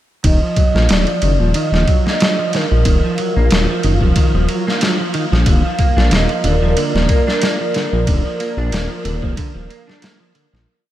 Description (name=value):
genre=trip hop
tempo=92 BPM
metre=4/4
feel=swing 54% on 16ths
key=Eb harmonic minor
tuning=A4 = 441 Hz
part: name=clean electric guitar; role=arpeggios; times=0.2-10.7 s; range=D3 to D4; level=-22 LUFS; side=right 3 dB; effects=analog chorus, low-pass filter, dub echo
part: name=dark detuned saw bass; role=bass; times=0.2-10.7 s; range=Eb1 to Bb1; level=-16 LUFS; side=equal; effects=none
part: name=trip hop sampler-style drum kit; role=drums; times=0.2-10.7 s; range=kick drum, ride cymbal, snare drum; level=-17 LUFS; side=equal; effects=none
part: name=wind-like tuned noise texture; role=texture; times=1.1-10.7 s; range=F3 to F4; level=-28 LUFS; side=equal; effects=built-in reverb, ensemble chorus
part: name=pure breathy sine lead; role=melody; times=0.3-10.0 s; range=Bb4 to F5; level=-23 LUFS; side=right 1 dB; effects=chorus, vintage 12-bit sampler grit, dub echo
part: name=dark analog pad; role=sustained chords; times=6.0-10.7 s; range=Bb4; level=-24 LUFS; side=right 2 dB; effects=chorus
room=light reverb, digital ambience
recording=none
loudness=-13 LUFS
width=side -13 dB against mid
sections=0.2-10.7 groove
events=filter sweep on clean electric guitar 0.2-10.7; fade-out 7.2-10.7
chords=0.2 Ebmadd9; 5.5 Bb/Eb